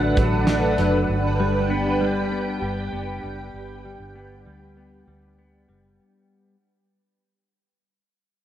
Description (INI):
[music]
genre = dream pop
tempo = 98 BPM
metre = 4/4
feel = straight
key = unclear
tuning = A4 = 442 Hz
[part]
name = soft string machine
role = sustained chords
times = 0.0-5.9 s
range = D4 to G5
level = -24 LUFS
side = right 2 dB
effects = phaser, ensemble chorus
[part]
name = clean electric guitar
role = arpeggios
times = 0.0-6.6 s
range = D3 to B3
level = -26 LUFS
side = left 3 dB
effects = wide subtle chorus, ping-pong delay
[part]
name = vintage muted fingered electric bass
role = bass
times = 0.0-6.0 s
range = F#1 to D2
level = -28 LUFS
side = equal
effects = none
[part]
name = loose indie drum kit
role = drums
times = 0.2-0.9 s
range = hi-hat, kick drum, snare drum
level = -25 LUFS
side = equal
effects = none
[sound]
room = wet lush hall reverb, RT60 2.8 s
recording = worn, warbling old tape, cassette tape, warbly pitch drift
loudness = -20 LUFS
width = side -11 dB against mid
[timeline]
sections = 0.0-6.0 A section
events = fade-out 0.0-6.0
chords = 0.0 D; 1.1 G